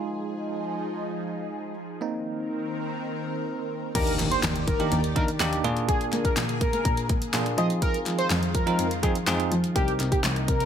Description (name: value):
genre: dance-pop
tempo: 124 BPM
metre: 4/4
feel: straight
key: Eb major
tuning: A4 = 440 Hz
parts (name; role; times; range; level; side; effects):
- bell-like tine electric piano; accompaniment; 0.0-10.3 s; Ab3 to Bb4; -30 LUFS; right 2 dB; medium stereo tremolo, sidechain pumping
- lush unison pad; sustained chords; 0.0-10.7 s; C3 to D5; -34 LUFS; equal; chorus, phaser, sidechain pumping
- octave-doubled lead; melody; 4.0-10.7 s; G4 to Eb5; -29 LUFS; equal; chorus, phaser, tape echo
- dark cello; bass; 4.0-10.7 s; C2 to Bb3; -28 LUFS; equal; sidechain pumping
- pop drum kit; drums; 4.0-10.7 s; crash cymbal, handclaps, hi-hat, kick drum, snare drum; -27 LUFS; equal; none
- impact; sound effects; 4.0-5.9 s; none; -35 LUFS; equal; none
- group handclap; percussion; 4.2-10.4 s; none; -37 LUFS; left 6 dB; none
room: light reverb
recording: none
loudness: -24 LUFS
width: side -8 dB against mid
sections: 0.0-4.0 A section; 4.0-10.7 B section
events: drop 4.0-10.7; impact 4.0-5.9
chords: 0.0 Fm7; 2.0 Cm7; 4.0 Ebmaj7; 5.6 Bb7; 7.6 Fm7; 9.8 Cm7